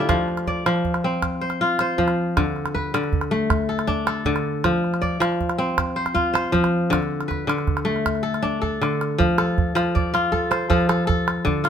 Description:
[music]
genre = west african traditional, West African string and xylophone music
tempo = 106 BPM (dotted quarters)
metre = 12/8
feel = straight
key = F lydian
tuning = A4 = 439 Hz
[part]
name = kora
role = arpeggios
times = 0.0-11.7 s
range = D3 to D5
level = -20 LUFS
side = left 1 dB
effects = none
[part]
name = calabash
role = percussion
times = 0.1-11.7 s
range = none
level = -25 LUFS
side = right 3 dB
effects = none
[sound]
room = moderate studio reverb, RT60 0.8 s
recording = minimal, uncompressed stereo recording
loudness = -19 LUFS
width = side -8 dB against mid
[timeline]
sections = 0.0-9.2 A section; 9.2-11.7 B section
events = drum fill 8.4-9.2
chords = 0.1 F5; 2.4 D5; 4.6 F5; 6.9 D5; 9.2 F

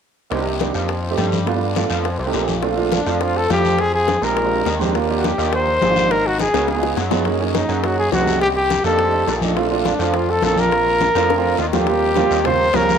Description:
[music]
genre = Afro-Cuban jazz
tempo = 208 BPM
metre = 4/4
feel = straight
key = Bb major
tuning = A4 = 440 Hz
[part]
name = warm concert grand piano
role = accompaniment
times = 0.3-12.9 s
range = G3 to Bb4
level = -22 LUFS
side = right 8 dB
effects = none
[part]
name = gritty driven synth bass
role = bass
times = 0.3-13.0 s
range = Ab1 to G2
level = -23 LUFS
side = left 1 dB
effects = none
[part]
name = bongos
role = percussion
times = 0.3-12.9 s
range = none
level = -27 LUFS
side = left 13 dB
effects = none
[part]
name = congas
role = percussion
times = 0.3-13.0 s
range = none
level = -27 LUFS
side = left 2 dB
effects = none
[part]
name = guiro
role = percussion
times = 0.3-13.0 s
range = none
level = -32 LUFS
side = left 13 dB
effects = none
[part]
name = warm trumpet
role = melody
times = 2.9-13.0 s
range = D4 to C5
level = -18 LUFS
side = left 1 dB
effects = none
[sound]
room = moderate echo chamber reverb, RT60 1.6 s, small room ambience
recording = 1960s-style stereo with parts hard left and right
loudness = -16 LUFS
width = side -7 dB against mid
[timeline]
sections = 0.3-2.6 A section; 2.6-11.9 B section; 11.9-13.0 C section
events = drum fill 6.4-7.3, 11.0-11.9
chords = 0.3 Cm9; 0.9 F9; 1.5 G9; 2.1 F9; 2.6 Bbmaj7; 3.8 Fm7; 4.4 Bb13; 4.9 Ebmaj7; 6.1 Abm9; 6.7 Db9; 7.3 Gb6; 8.4 Cm9; 9.0 F13; 9.6 Bbmaj7; 11.9 Eb6

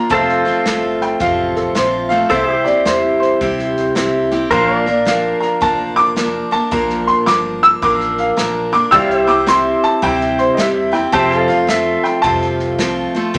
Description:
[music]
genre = honky-tonk and classic country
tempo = 109 BPM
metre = 4/4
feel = swing 64% on 8ths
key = F major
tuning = A4 = 440 Hz
[part]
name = warm upright piano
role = second line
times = 0.0-12.4 s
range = A4 to E6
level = -18 LUFS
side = equal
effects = none
[part]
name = picked steel-string acoustic guitar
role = accompaniment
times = 0.0-13.4 s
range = F2 to Bb4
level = -20 LUFS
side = equal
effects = none
[part]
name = pedal steel guitar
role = sustained chords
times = 0.0-13.3 s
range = G4 to F5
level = -22 LUFS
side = equal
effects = none
[part]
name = upright bass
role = bass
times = 0.1-13.4 s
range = F1 to F2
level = -35 LUFS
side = equal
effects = none
[part]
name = natural country drum kit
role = drums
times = 0.1-13.4 s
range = hi-hat, kick drum, snare drum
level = -28 LUFS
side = equal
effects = none
[sound]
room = wet studio reverb, RT60 0.7 s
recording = none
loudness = -15 LUFS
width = mono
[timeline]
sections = 0.0-13.3 A section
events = upright piano solo 0.0-13.3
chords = 0.1 F; 2.3 C; 4.5 Bb; 8.9 C; 11.1 F

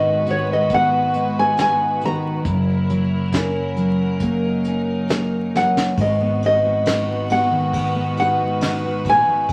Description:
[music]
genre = acoustic folk-pop ballad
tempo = 68 BPM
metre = 4/4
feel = straight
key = G# minor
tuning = A4 = 440 Hz
[part]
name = nylon-string guitar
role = melody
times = 0.0-9.5 s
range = C#5 to A#5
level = -21 LUFS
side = equal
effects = none
[part]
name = fingerpicked steel-string acoustic guitar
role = accompaniment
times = 0.0-9.5 s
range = F#2 to F#4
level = -26 LUFS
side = equal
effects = none
[part]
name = warm studio string section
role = sustained chords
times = 0.0-9.5 s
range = F#3 to B4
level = -28 LUFS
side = equal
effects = none
[part]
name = fretless electric bass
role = bass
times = 0.0-9.5 s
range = F#1 to G#1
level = -29 LUFS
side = equal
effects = none
[part]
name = soft brush drum kit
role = drums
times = 0.3-9.5 s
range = hi-hat, kick drum, ride cymbal, snare drum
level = -29 LUFS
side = equal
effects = none
[sound]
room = wet studio reverb, RT60 0.7 s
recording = vinyl crackle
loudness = -19 LUFS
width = mono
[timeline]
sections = 0.0-6.0 A section; 6.0-9.5 B section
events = drum fill 5.5-6.0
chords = 0.0 G#m7; 2.5 F#7; 6.0 G#m7

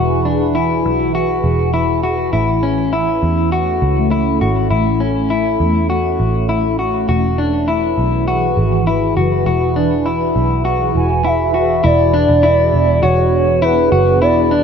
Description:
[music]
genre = dream pop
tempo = 101 BPM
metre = 4/4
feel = straight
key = unclear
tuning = A4 = 440 Hz
[part]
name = shimmering ambient pad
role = sustained chords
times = 0.0-14.6 s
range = E3 to B4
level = -19 LUFS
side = right 1 dB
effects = chorus, built-in reverb, phaser
[part]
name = electric guitar at the edge of break-up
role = arpeggios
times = 0.0-14.6 s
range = C#4 to F#4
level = -17 LUFS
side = left 3 dB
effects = lush chorus, digital delay
[part]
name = vintage muted picked electric bass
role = bass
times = 0.0-14.6 s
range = E1 to E2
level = -18 LUFS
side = right 1 dB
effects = none
[part]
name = hollow clarinet-like synth lead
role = melody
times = 11.0-14.6 s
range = B4 to G#5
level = -15 LUFS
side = right 2 dB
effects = chorus, digital delay
[sound]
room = moderate plate reverb, RT60 2.9 s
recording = none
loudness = -13 LUFS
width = side -7 dB against mid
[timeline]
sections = 0.0-11.8 A section; 11.8-14.6 B section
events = none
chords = 0.0 Eadd9; 2.3 A; 7.1 Eadd9

